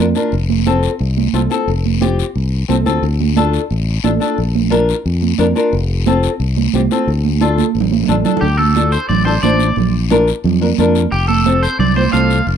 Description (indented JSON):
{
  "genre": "latin, cumbia",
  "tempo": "178 BPM",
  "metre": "4/4",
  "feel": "straight",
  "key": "D minor",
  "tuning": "A4 = 440 Hz",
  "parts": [
    { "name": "flamenco guitar", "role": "accompaniment", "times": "0.0-12.4 s", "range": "C4 to C5", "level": "-17 LUFS", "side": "left 4 dB", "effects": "none" },
    { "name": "fingered electric bass", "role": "bass", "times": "0.0-12.6 s", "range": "F1 to F2", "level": "-16 LUFS", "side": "left 1 dB", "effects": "none" },
    { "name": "guiro", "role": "percussion", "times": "0.2-12.6 s", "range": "none", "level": "-30 LUFS", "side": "left 22 dB", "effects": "none" },
    { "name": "congas", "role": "percussion", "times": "0.3-12.6 s", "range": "none", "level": "-18 LUFS", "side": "right 17 dB", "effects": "none" },
    { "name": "electric guitar at the edge of break-up", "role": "melody", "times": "8.4-12.5 s", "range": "G4 to F5", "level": "-17 LUFS", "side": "equal", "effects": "spring reverb, slapback echo" }
  ],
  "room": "light reverb",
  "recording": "dry, close 1970s-style studio recording",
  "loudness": "-12 LUFS",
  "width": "side -8 dB against mid",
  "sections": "0.0-8.4 A section; 8.4-12.6 B section",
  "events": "drum fill 7.6-8.4; clean electric guitar solo 8.4-12.6",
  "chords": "0.3 F; 3.0 Dm; 4.4 Bb; 5.7 F; 7.1 Dm; 9.8 Bb; 11.1 F"
}